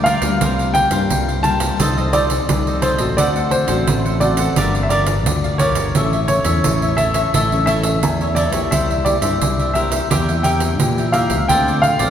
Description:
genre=samba and choro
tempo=87 BPM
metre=4/4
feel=straight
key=D minor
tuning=A4 = 440 Hz
part: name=warm baby grand piano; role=melody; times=0.0-12.1 s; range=C5 to A5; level=-20 LUFS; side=equal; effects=none
part: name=cavaquinho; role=accompaniment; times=0.0-12.1 s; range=D4 to G5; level=-23 LUFS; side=equal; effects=none
part: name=nylon-string guitar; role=accompaniment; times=0.0-12.1 s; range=G2 to Bb4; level=-24 LUFS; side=left 3 dB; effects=none
part: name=fingered electric bass with an envelope filter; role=bass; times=0.0-12.1 s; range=G1 to Bb2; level=-20 LUFS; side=equal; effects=none
part: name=pandeiro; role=percussion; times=0.1-12.1 s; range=none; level=-21 LUFS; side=right 3 dB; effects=none
room=wet church reverb, RT60 3.5 s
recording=recorded in a church or concert hall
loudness=-14 LUFS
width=side -9 dB against mid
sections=0.0-12.1 A section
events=none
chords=0.4 C7sus4; 1.8 F7/C; 3.2 D7; 4.6 Gm7; 6.0 A; 8.7 C7; 10.1 Edim; 11.5 Dm7

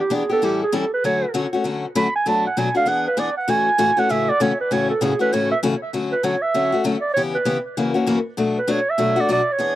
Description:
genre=jazz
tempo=196 BPM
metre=4/4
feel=swing 60% on 8ths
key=unclear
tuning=A4 = 440 Hz
part: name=mellow clarinet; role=melody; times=0.0-9.8 s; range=G4 to B5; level=-20 LUFS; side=right 3 dB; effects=tape echo
part: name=picked steel-string acoustic guitar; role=accompaniment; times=0.1-9.8 s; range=F#2 to A4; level=-21 LUFS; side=left 3 dB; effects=none
room=little or no reverb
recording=dry, close 1970s-style studio recording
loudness=-18 LUFS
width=side -14 dB against mid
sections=0.0-5.9 A section; 5.9-9.8 B section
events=clarinet solo 0.0-5.9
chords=0.4 A7; 1.0 Dmaj7; 2.3 Bm7; 2.9 E7; 3.5 A6; 5.9 Dmaj7; 7.2 C#m7b5; 7.8 F#7; 8.4 Bm7

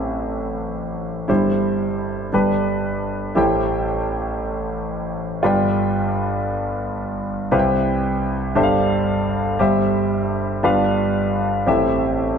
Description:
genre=gospel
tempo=58 BPM (dotted quarters)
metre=6/8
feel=straight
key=unclear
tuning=A4 = 444 Hz
part: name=warm concert grand piano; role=solo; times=0.0-12.4 s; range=G1 to G5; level=-18 LUFS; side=equal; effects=none
room=wet scoring stage reverb, RT60 2.0 s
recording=none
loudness=-18 LUFS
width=side -7 dB against mid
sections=0.0-3.4 A section; 3.4-12.4 B section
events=none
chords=0.0 Am7; 1.3 C/G; 2.3 G; 3.4 Am7; 5.4 G7; 7.5 Cmaj7; 8.6 G9sus4; 9.6 C/G; 10.6 G7; 11.7 Am7

